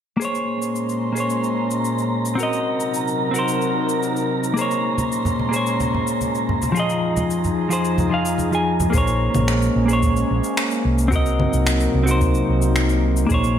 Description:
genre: sunset chillout.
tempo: 110 BPM.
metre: 4/4.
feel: straight.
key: Bb minor.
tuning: A4 = 440 Hz.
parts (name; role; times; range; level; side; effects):
clean electric guitar; accompaniment; 0.2-13.6 s; F3 to Ab5; -21 LUFS; equal; auto-pan, low-pass filter, digital delay.
airy breathy pad; sustained chords; 0.5-13.6 s; F2 to C6; -25 LUFS; equal; chorus.
electronic cabasa, congas and finger snaps; drums; 0.2-13.5 s; none; -28 LUFS; left 2 dB; overdrive, small room ambience.
wind-like tuned noise texture; texture; 0.8-9.0 s; Bb5; -29 LUFS; right 3 dB; built-in reverb.
congas; percussion; 5.0-8.9 s; none; -26 LUFS; right 1 dB; none.
fingered electric bass; bass; 8.9-13.6 s; Bb1 to C2; -20 LUFS; equal; none.
electronic kick drum; drums; 8.9-13.4 s; none; -22 LUFS; equal; overdrive, small room ambience.
room: moderate lush hall reverb, RT60 1.6 s, digital ambience.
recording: bright 1980s-style digital production.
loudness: -18 LUFS.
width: side -9 dB against mid.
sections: 0.2-8.9 A section; 8.9-13.6 B section.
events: none.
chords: 0.2 Bbm9; 2.4 Cm7b5; 4.6 Bbm9; 6.8 Fm7; 8.9 Bbm9; 11.1 Cm7b5.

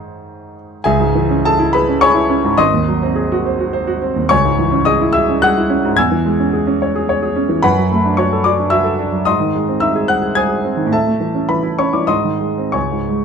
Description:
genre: classical, romantic character piece for solo piano.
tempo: 87-113 BPM.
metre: 3/4.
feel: rubato.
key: C# minor.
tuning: A4 = 442 Hz.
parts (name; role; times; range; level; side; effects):
clear concert grand piano; solo; 0.0-13.2 s; G#1 to G#6; -13 LUFS; equal; none.
room: moderate small room reverb, RT60 0.5 s.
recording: dark, warm production.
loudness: -13 LUFS.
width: side -6 dB against mid.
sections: 0.8-13.2 A section.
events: none.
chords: 0.0 G#; 0.8 C#m; 2.6 G#7; 4.3 C#m; 6.0 C#m/E; 7.6 D/F#; 9.3 G#; 10.9 A; 12.1 G#.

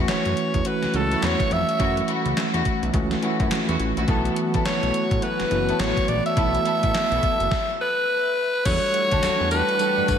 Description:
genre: R&B, new jack swing.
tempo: 105 BPM.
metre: 4/4.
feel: swing 61% on 16ths.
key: E dorian.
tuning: A4 = 440 Hz.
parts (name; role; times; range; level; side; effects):
bell-like tine electric piano; accompaniment; 0.0-10.2 s; E3 to F#5; -26 LUFS; right 2 dB; medium stereo tremolo, shimmer reverb.
warm studio string section; stabs; 0.0-10.0 s; A3 to A4; -30 LUFS; left 3 dB; analog delay, shimmer reverb.
fat analog bass; bass; 0.0-10.2 s; F#1 to G2; -27 LUFS; equal; none.
raspy alto saxophone; melody; 0.1-10.2 s; A4 to E5; -24 LUFS; equal; analog delay, shimmer reverb.
gated 80s digital drum machine; drums; 0.1-10.2 s; crash cymbal, handclaps, hi-hat, kick drum, snare drum, tambourine; -27 LUFS; equal; gated reverb, gated reverb snare, overdrive.
warm analog pad; sustained chords; 4.1-10.2 s; E3 to F#5; -30 LUFS; left 1 dB; chorus, shimmer reverb.
room: wet lush hall reverb, RT60 1.9 s.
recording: dreamy mix soaked in reverb.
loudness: -20 LUFS.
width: side -8 dB against mid.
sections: 0.0-8.7 A section; 8.7-10.2 B section.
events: stop 7.5-8.7.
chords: 0.0 F#m7; 4.1 B7sus4; 8.7 Em11.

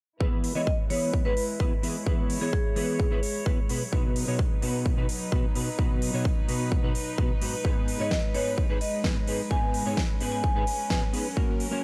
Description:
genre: EDM, festival progressive house.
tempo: 129 BPM.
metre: 4/4.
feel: straight.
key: G# minor.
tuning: A4 = 440 Hz.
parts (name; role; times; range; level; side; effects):
mellow electric guitar; accompaniment; 0.2-11.8 s; G#2 to C#5; -34 LUFS; equal; ensemble chorus, sidechain pumping.
rich chamber string section; sustained chords; 0.2-11.8 s; F#3 to C#5; -38 LUFS; equal; vintage 12-bit sampler grit, sidechain pumping, low-pass filter.
electronic kick drum; drums; 0.2-11.5 s; none; -29 LUFS; equal; studio reverb.
big-room dance drum kit; drums; 0.4-11.7 s; hi-hat, snare drum; -37 LUFS; equal; studio reverb.
vibraphone with medium hard mallets; melody; 0.6-3.4, 8.0-11.0 s; G#4 to G#5; -35 LUFS; equal; digital delay.
room: studio reverb.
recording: none.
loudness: -27 LUFS.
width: mono.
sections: 0.2-11.8 A section.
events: none.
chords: 0.2 E; 3.9 B; 7.6 G#m.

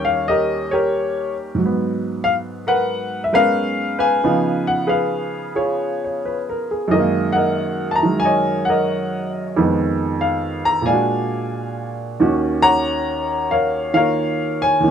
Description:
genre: solo jazz.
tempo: 91 BPM.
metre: 4/4.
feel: swing 66% on 8ths, rubato.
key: Eb minor.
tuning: A4 = 440 Hz.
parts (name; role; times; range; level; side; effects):
clear upright piano; solo; 0.0-14.9 s; Eb2 to Bb5; -17 LUFS; equal; none.
room: light reverb.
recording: close, detailed microphones.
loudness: -17 LUFS.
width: side -8 dB against mid.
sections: 0.0-14.9 A section.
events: none.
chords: 0.0 Eb7; 1.6 Abm9; 4.2 Db9; 6.9 Gb69; 9.6 Fm7b5; 10.9 Bb7b13; 12.2 Ebm7.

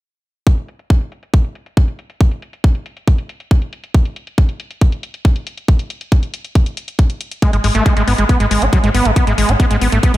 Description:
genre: psychedelic trance.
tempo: 138 BPM.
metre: 4/4.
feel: straight.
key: G# phrygian.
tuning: A4 = 443 Hz.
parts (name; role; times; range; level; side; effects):
electronic hi-hat; drums; 0.5-10.2 s; none; -29 LUFS; left 4 dB; overdrive, low-pass filter on hats, studio reverb.
electronic kick drum; drums; 0.5-10.1 s; none; -12 LUFS; equal; studio reverb.
overdriven acid bass; riff; 7.4-10.2 s; F#3 to D#4; -16 LUFS; right 1 dB; distortion, auto-pan, cassette tape, sidechain pumping, diffuse ambient delay.
round analog bass; bass; 7.5-10.2 s; G#1; -16 LUFS; equal; none.
room: light reverb.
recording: none.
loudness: -14 LUFS.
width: side -16 dB against mid.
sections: 0.5-10.2 A section.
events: none.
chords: 0.5 G#5.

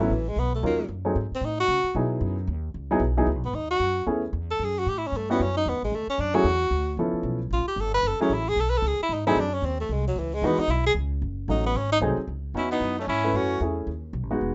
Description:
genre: jazz, small-group swing and bop.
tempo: 226 BPM.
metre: 4/4.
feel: swing 60% on 8ths.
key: C# minor.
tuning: A4 = 440 Hz.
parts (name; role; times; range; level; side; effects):
warm tenor saxophone; melody; 0.0-13.6 s; E3 to B4; -28 LUFS; equal; none.
dark baby grand piano; accompaniment; 0.0-14.5 s; E3 to B4; -28 LUFS; equal; none.
upright bass; bass; 0.0-14.5 s; E1 to C#3; -31 LUFS; equal; none.
clear trumpet; second line; 12.6-13.6 s; A3 to C#4; -32 LUFS; equal; none.
room: moderate small room reverb, RT60 0.5 s.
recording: rough home demo mix, nothing above 7.8 kHz.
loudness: -26 LUFS.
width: mono.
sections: 0.0-3.8 A section; 3.8-12.3 A section; 12.3-14.5 B section.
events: tenor saxophone solo 0.0-12.3.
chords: 0.0 A69; 0.6 D#m7; 1.2 G#(b9); 1.7 C#m11; 3.8 F#m11; 4.9 A13; 5.9 Dadd9; 7.0 C#7alt; 8.0 F#m9; 9.1 G#7; 10.2 C#m11; 11.2 D#m7b5; 11.8 G#7b9; 12.3 C#m11; 13.3 F#m9; 13.9 B7.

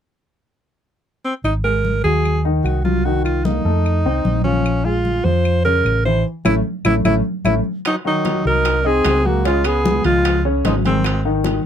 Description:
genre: Afro-Cuban jazz.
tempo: 150 BPM.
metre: 4/4.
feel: straight.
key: Ab mixolydian.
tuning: A4 = 440 Hz.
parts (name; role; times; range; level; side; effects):
clear alto saxophone; melody; 1.2-11.2 s; C4 to C5; -19 LUFS; right 2 dB; none.
hollow-body short-scale fingered electric bass; bass; 1.4-11.6 s; Ab1 to F2; -19 LUFS; equal; none.
congas; percussion; 1.4-11.6 s; none; -25 LUFS; left 2 dB; none.
claves; percussion; 1.5-11.2 s; none; -28 LUFS; left 3 dB; none.
warm upright piano; accompaniment; 1.6-11.6 s; Db3 to Eb5; -22 LUFS; left 2 dB; none.
trombone with metal mute; second line; 7.9-11.2 s; Eb3 to Eb4; -25 LUFS; left 3 dB; none.
bongos; percussion; 7.9-11.6 s; none; -28 LUFS; left 4 dB; none.
timbales; percussion; 7.9-11.7 s; none; -28 LUFS; right 4 dB; none.
room: light reverb.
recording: close, detailed microphones.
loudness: -15 LUFS.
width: side -9 dB against mid.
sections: 0.0-1.5 A section; 1.5-7.9 B section; 7.9-11.7 C section.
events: band accent 6.3-7.9; drum fill 7.5-7.9.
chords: 0.0 N.C.; 1.5 Ab7; 3.1 Cm7b5; 3.9 F7; 4.7 Bbm9; 6.3 A; 7.9 Ab7; 9.5 Db7; 11.0 Ab5.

